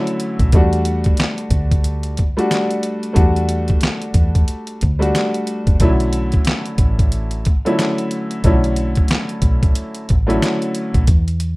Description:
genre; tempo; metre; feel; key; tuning
hip hop, boom-bap hip-hop; 91 BPM; 4/4; swing 59% on 16ths; B minor; A4 = 440 Hz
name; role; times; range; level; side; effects
warm upright piano; accompaniment; 0.0-11.0 s; D3 to F#4; -20 LUFS; equal; cassette tape, high-pass filter, low-pass filter
trip hop sampler-style drum kit; drums; 0.1-11.6 s; handclaps, hi-hat, kick drum, snare drum; -16 LUFS; equal; none
deep dub fingered electric bass; bass; 0.4-11.6 s; F#1 to E2; -18 LUFS; equal; none
room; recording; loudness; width
light reverb; rough home demo mix; -15 LUFS; side -22 dB against mid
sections
0.0-11.6 A section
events
none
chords
0.0 Bm11; 0.5 Em11; 5.8 Bm11

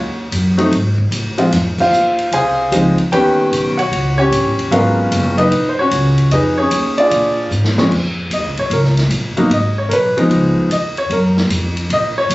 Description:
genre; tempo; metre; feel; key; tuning
jazz piano trio; 150 BPM; 4/4; swing 66% on 8ths; Eb minor, Bb minor from 7.9 s; A4 = 438 Hz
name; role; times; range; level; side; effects
warm concert grand piano; melody; 0.0-12.3 s; Bb2 to Ab5; -14 LUFS; equal; none
upright bass; bass; 0.0-12.3 s; Eb1 to Bb2; -18 LUFS; equal; none
swinging big-band drum kit; drums; 0.3-12.3 s; crash cymbal, hi-hat, kick drum, ride cymbal, snare drum; -24 LUFS; equal; none
room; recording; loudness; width
little or no reverb; recorded on a phone in the room, club reverb, compression, nothing above 7.9 kHz; -13 LUFS; side -19 dB against mid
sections
0.0-7.9 A section; 7.9-12.3 B section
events
band accent 1.7; drum fill 7.5-7.9; grand piano solo 7.9-12.3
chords
0.0 Ebm7; 0.7 N.C.; 1.5 Dbmaj9; 3.1 Eb7alt; 4.7 Abm11; 6.3 Fm7b5; 7.1 Bb7; 7.9 Bbm; 9.5 Abm; 10.3 Db9; 11.1 Gbmaj7

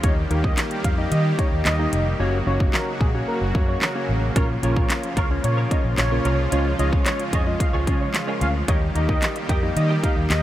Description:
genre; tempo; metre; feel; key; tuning
dance-pop; 111 BPM; 4/4; straight; unclear; A4 = 440 Hz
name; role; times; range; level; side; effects
wide unison lead; melody; 0.0-10.4 s; Ab4 to G5; -29 LUFS; equal; sidechain pumping, analog delay
warm analog keys; accompaniment; 0.0-10.3 s; Ab3 to Eb5; -28 LUFS; left 1 dB; chorus, sidechain pumping
soft supersaw; sustained chords; 0.0-10.4 s; Db3 to G4; -28 LUFS; equal; sidechain pumping
vintage muted fingered electric bass; bass; 0.0-10.4 s; F1 to Eb3; -23 LUFS; equal; sidechain pumping
pop drum kit; drums; 0.0-10.4 s; handclaps, hi-hat, kick drum, snare drum; -23 LUFS; equal; none
direct-recorded clean electric guitar; riff; 4.4-10.3 s; Db4 to Eb5; -31 LUFS; right 3 dB; ensemble chorus
room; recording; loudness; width
moderate huge ambient reverb, RT60 7.0 s; dreamy mix soaked in reverb; -19 LUFS; side -13 dB against mid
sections
0.0-10.4 A section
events
hi-hats muted 2.2-4.4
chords
0.0 Eb; 2.2 Gb; 4.4 Bbm; 6.5 Db; 8.7 Eb

